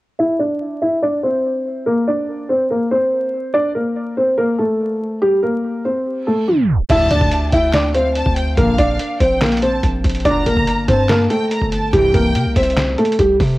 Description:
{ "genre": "hip hop, trap", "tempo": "143 BPM", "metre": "4/4", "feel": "half-time", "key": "unclear", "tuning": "A4 = 440 Hz", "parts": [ { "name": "dark baby grand piano", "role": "melody", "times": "0.2-13.4 s", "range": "G3 to E5", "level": "-16 LUFS", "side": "equal", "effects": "low-pass filter, cassette tape" }, { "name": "reverse cymbal", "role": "sound effects", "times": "6.2-6.9 s", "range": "none", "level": "-37 LUFS", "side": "right 6 dB", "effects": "none" }, { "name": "warm studio violin section", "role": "second line", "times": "6.9-12.8 s", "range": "E5 to Bb5", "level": "-24 LUFS", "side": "right 1 dB", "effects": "plate reverb, analog delay" }, { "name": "analog synth brass", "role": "stabs", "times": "6.9-12.3 s", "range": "D2 to E3", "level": "-24 LUFS", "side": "equal", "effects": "chorus" }, { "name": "hard-hitting 808-style bass", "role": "bass", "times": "6.9-13.6 s", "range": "G1 to C3", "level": "-20 LUFS", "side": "equal", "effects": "none" }, { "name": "lo-fi sampler-style drum kit", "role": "drums", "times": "6.9-13.5 s", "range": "crash cymbal, handclaps, hi-hat, kick drum, snare drum", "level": "-20 LUFS", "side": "equal", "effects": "cassette tape" } ], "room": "moderate studio reverb, RT60 0.6 s", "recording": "home recording on cassette, vinyl crackle, tape stop", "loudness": "-14 LUFS", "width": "side -18 dB against mid", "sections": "0.2-6.9 A section; 6.9-13.6 B section", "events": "filter sweep on grand piano 0.2-6.9; reverse cymbal 6.2-6.9; tape stop 6.5-6.9", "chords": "0.2 Cadd9; 1.9 Bb; 3.5 Bbmaj7(no3); 5.2 C5; 6.9 Dm; 8.6 Bb; 10.3 Gmadd9; 11.9 C" }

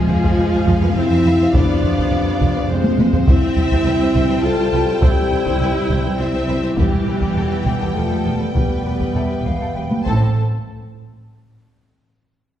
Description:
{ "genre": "cinematic, epic orchestral film score", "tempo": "103 BPM", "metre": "3/4", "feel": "straight", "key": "unclear", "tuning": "A4 = 440 Hz", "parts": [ { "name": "warm symphonic violin section", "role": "melody", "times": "0.0-10.4 s", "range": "G4 to A5", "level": "-29 LUFS", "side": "left 3 dB", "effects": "none" }, { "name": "warm symphonic violin section", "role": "second line", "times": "0.0-10.4 s", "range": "A4 to G5", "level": "-29 LUFS", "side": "left 1 dB", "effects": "none" }, { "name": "rich symphonic viola section", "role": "accompaniment", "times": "0.0-10.4 s", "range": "E3 to A4", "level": "-24 LUFS", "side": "equal", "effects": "none" }, { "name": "clear trombone section", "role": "sustained chords", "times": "0.0-10.3 s", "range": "C3 to C4", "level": "-29 LUFS", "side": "right 1 dB", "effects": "none" }, { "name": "dark French horn section", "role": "sustained chords", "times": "0.0-10.3 s", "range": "G3 to A4", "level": "-21 LUFS", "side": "left 1 dB", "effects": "none" }, { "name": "dark symphonic cello section", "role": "bass", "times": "0.1-10.4 s", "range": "C2 to A2", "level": "-24 LUFS", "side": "right 1 dB", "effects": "none" }, { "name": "warm studio double bass section", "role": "bass", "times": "0.1-10.4 s", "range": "E1 to C2", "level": "-23 LUFS", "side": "right 2 dB", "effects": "none" }, { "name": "taiko ensemble", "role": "drums", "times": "0.1-11.2 s", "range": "none", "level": "-20 LUFS", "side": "equal", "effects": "none" }, { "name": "mellow hollow silver concert flute", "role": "second line", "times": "9.1-10.3 s", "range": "E5 to A5", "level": "-31 LUFS", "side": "equal", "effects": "none" }, { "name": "timpani", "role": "percussion", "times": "10.1-10.3 s", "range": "A2", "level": "-48 LUFS", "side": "right 1 dB", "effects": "none" } ], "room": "wet scoring stage reverb, RT60 1.7 s", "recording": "heard from further back in the room", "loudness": "-15 LUFS", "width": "side -11 dB against mid", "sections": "0.0-10.4 A section; 10.4-12.1 B section", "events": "drum fill 2.8-3.3, 9.9-10.4", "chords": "0.0 Fm; 3.3 C; 6.8 Em; 10.1 Am; 10.4 N.C." }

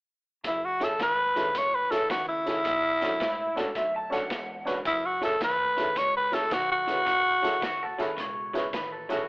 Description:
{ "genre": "electric blues shuffle", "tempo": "109 BPM", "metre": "4/4", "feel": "swing 67% on 8ths", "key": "F# minor", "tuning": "A4 = 440 Hz", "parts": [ { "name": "overdriven semi-hollow guitar", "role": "riff", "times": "0.4-9.3 s", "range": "F#2 to G#3", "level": "-41 LUFS", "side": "equal", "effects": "none" }, { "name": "upright bass", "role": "bass", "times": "0.4-9.3 s", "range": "E1 to C#3", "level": "-49 LUFS", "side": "equal", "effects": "none" }, { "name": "vintage drum kit", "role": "drums", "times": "0.4-9.2 s", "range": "hi-hat, kick drum, snare drum", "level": "-36 LUFS", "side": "equal", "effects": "none" }, { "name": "growling tenor saxophone", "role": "melody", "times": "0.5-8.3 s", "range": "E4 to C#5", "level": "-25 LUFS", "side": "equal", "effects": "none" }, { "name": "dark upright piano", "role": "accompaniment", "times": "0.8-9.2 s", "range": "C#4 to B4", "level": "-32 LUFS", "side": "equal", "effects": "none" }, { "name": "electric guitar through a small old amp", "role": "second line", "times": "3.2-9.3 s", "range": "E4 to A5", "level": "-32 LUFS", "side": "equal", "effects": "none" } ], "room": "moderate spring reverb, RT60 2.5 s", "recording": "telephone sound", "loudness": "-24 LUFS", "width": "side -33 dB against mid", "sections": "0.4-9.3 A section", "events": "none", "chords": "0.4 F#m7; 2.7 Bm7; 4.9 F#m7" }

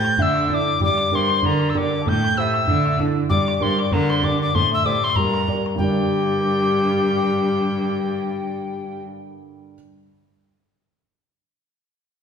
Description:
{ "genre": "celtic folk, Celtic reel", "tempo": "193 BPM", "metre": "4/4", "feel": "swing 57% on 8ths", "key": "G dorian", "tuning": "A4 = 440 Hz", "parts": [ { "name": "mellow tin whistle", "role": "melody", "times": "0.0-9.0 s", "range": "G5 to G6", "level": "-23 LUFS", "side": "left 2 dB", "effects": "none" }, { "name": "mellow hollow wooden flute", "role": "second line", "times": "0.0-9.0 s", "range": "G4 to A5", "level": "-25 LUFS", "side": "left 2 dB", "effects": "none" }, { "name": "dark concert grand piano", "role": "accompaniment", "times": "0.0-9.8 s", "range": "G2 to D5", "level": "-26 LUFS", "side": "right 3 dB", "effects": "none" }, { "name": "bodhran", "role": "percussion", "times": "0.0-6.0 s", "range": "none", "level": "-26 LUFS", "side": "left 1 dB", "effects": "none" }, { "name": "clear cello", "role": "bass", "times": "0.2-9.0 s", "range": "G2 to D3", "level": "-24 LUFS", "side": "equal", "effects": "none" } ], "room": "wet recital hall reverb, RT60 1.7 s", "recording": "recorded in a church or concert hall", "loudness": "-18 LUFS", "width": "side -7 dB against mid", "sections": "0.0-5.8 A section; 5.8-8.3 B section", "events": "none", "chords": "0.2 Dsus2; 0.8 Gm; 2.1 Am7; 2.7 Dsus2; 3.3 Gm; 4.5 Am7; 5.2 Gm" }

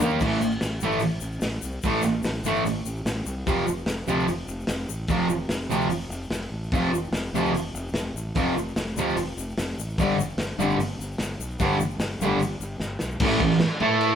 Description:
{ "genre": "garage rock duo or trio", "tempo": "148 BPM", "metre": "4/4", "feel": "straight", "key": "A minor", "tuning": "A4 = 440 Hz", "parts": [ { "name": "fuzz guitar", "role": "riff", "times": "0.0-14.2 s", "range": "F2 to A4", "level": "-23 LUFS", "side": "right 1 dB", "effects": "distortion" }, { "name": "fuzz fingered electric bass", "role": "bass", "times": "0.0-14.2 s", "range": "F1 to A2", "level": "-32 LUFS", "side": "equal", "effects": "overdrive" }, { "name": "crunchy breakbeat drum kit", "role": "drums", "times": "0.0-14.1 s", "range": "crash cymbal, hi-hat, kick drum, snare drum, toms", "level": "-30 LUFS", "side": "left 1 dB", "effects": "none" }, { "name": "egg shaker", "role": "percussion", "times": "0.0-13.2 s", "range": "none", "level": "-40 LUFS", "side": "left 9 dB", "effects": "none" } ], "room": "moderate large studio reverb, RT60 0.8 s", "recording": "band playing live in one room", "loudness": "-23 LUFS", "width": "side -8 dB against mid", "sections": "0.2-13.2 A section", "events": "drum fill 0.0, 12.8-13.2", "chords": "0.0 D#5; 0.2 A5; 3.5 F5; 10.0 G5; 13.2 A5" }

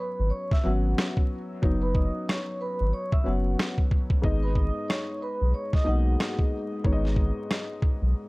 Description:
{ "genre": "hip hop, boom-bap hip-hop", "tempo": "92 BPM", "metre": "4/4", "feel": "swing 60% on 16ths", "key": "G# minor", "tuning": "A4 = 440 Hz", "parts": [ { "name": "vibraphone with soft mallets", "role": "melody", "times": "0.0-6.4 s", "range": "F#4 to E6", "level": "-33 LUFS", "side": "right 1 dB", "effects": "high-pass filter, low-pass filter, analog delay" }, { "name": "dark upright piano", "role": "accompaniment", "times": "0.0-8.3 s", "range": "G#2 to D#5", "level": "-32 LUFS", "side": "left 2 dB", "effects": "cassette tape, high-pass filter, low-pass filter" }, { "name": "round analog bass", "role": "bass", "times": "0.2-8.1 s", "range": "F#1 to B1", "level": "-25 LUFS", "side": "equal", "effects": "none" }, { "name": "boom bap sampler-style drum kit", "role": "drums", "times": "0.5-8.0 s", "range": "kick drum, rim click, snare drum", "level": "-24 LUFS", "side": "equal", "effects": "vintage 12-bit sampler grit" } ], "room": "little or no reverb", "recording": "vinyl crackle", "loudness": "-24 LUFS", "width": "side -24 dB against mid", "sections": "0.0-8.3 A section", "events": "break 0.0-8.3", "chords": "0.0 F#sus4; 4.2 G#m" }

